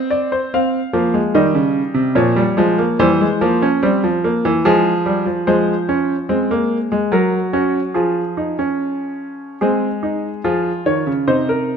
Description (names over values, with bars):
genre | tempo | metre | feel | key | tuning
classical, baroque-style 3-part fugue for grand piano | 73 BPM | 3/4 | straight | F minor, Db major from 5.5 s | A4 = 440 Hz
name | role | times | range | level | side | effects
clear baby grand piano | solo | 0.0-11.8 s | Bb2 to F5 | -15 LUFS | equal | none
room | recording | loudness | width
moderate recital hall reverb, RT60 1.4 s | close, detailed microphones | -15 LUFS | side -6 dB against mid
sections
0.0-5.5 A section; 5.5-10.4 B section; 10.4-11.8 C section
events
none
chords
0.0 N.C.; 0.5 Fm; 2.2 Bbm; 3.0 C7/E; 4.6 Fm; 5.5 Db/F; 7.1 Gb; 8.0 Db/F; 9.6 Ab; 10.4 Db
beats
| 0.54 1.36 2.18 | 3.00 3.82 4.64 | 5.47 6.30 7.12 | 7.95 8.77 9.60 | 10.43 11.26